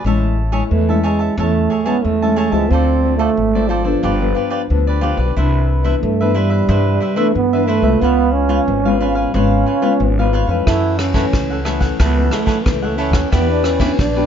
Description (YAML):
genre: samba and choro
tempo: 90 BPM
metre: 4/4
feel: straight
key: A major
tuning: A4 = 439 Hz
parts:
  - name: cavaquinho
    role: accompaniment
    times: 0.0-14.3 s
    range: E4 to A5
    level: -23 LUFS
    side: right 1 dB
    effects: none
  - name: upright bass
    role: bass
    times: 0.0-14.3 s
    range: G1 to G2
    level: -18 LUFS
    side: equal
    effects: none
  - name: nylon-string guitar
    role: accompaniment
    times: 0.1-14.3 s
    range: F#2 to G4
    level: -20 LUFS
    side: left 7 dB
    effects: none
  - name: breathy trombone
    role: second line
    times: 0.7-14.3 s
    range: F3 to E4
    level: -18 LUFS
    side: right 6 dB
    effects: none
  - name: vintage brush drum kit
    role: drums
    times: 10.7-14.1 s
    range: kick drum, ride cymbal, rim click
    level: -19 LUFS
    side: equal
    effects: none
room: moderate studio reverb, RT60 0.7 s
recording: dark, warm production, nothing above 7.6 kHz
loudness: -14 LUFS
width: side -8 dB against mid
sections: 0.0-14.3 A section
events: trombone solo 0.0-14.3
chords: 0.0 Amaj7; 2.7 Dm7; 4.0 G7; 5.4 Cmaj9; 8.0 C#7; 10.7 F#m7; 13.3 Em7